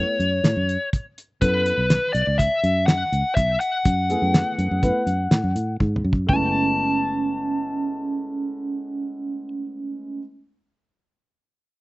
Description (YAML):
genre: progressive instrumental, band music in an uneven meter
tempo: 123 BPM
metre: 5/4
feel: straight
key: F# minor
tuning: A4 = 442 Hz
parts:
  - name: biting lead guitar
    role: melody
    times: 0.0-9.5 s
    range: B4 to A5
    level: -23 LUFS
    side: left 2 dB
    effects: overdrive, slapback echo
  - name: dark grand piano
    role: accompaniment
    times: 0.0-10.2 s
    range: G#3 to B4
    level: -30 LUFS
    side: equal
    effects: slapback echo
  - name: fingered electric bass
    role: bass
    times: 0.0-10.2 s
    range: F#1 to A2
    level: -24 LUFS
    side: equal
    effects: none
  - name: cloth-damped thuddy drum kit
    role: drums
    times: 0.2-6.4 s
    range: hi-hat, kick drum, snare drum, toms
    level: -20 LUFS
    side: equal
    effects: none
  - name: vibraphone with medium hard mallets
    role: second line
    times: 6.3-10.2 s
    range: C#4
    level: -26 LUFS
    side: right 3 dB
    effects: none
room: little or no reverb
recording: recorded outdoors, with no room sound, nothing above 8.0 kHz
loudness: -20 LUFS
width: side -20 dB against mid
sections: 0.0-6.3 A section; 6.3-8.7 B section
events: drum fill 5.8-6.3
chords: 0.0 F#m11; 1.4 Esus4; 3.9 F#m11